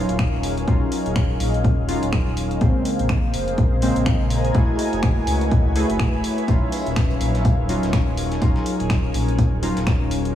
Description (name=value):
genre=deep house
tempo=124 BPM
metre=4/4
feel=swing 58% on 16ths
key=Eb minor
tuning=A4 = 441 Hz
part: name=airy breathy pad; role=sustained chords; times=0.0-10.3 s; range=Gb3 to Gb5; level=-30 LUFS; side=left 1 dB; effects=chorus, sidechain pumping
part: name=warm analog keys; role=stabs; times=0.0-10.3 s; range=Db3 to Ab4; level=-24 LUFS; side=equal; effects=chorus, sidechain pumping, tape echo
part: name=round analog bass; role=bass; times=0.0-10.3 s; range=Eb1 to Db2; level=-25 LUFS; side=equal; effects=tube saturation, sidechain pumping
part: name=granular cloud pad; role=texture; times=0.0-10.3 s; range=Ab4 to Ab5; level=-30 LUFS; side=equal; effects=built-in reverb, sidechain pumping
part: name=punchy analog drum machine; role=drums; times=0.1-10.3 s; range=finger snaps, hi-hat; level=-32 LUFS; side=equal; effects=none
part: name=electronic kick drum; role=drums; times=0.2-10.0 s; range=none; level=-19 LUFS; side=equal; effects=none
part: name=breakbeat sampler-style drum kit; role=drums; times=6.5-10.2 s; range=hi-hat, snare drum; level=-40 LUFS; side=equal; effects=high-pass filter on snare, high-pass filter on hats
room=light reverb, digital ambience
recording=small room ambience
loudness=-18 LUFS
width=side -11 dB against mid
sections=0.0-10.3 A section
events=none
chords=0.0 Ebm9; 2.6 Bbm9; 4.5 Gbm9; 6.5 Ebm9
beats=0.19 | 0.68 1.16 1.64 2.13 | 2.61 3.10 3.58 4.06 | 4.55 5.03 5.51 6.00 | 6.48 6.97 7.45 7.93 | 8.42 8.90 9.39 9.87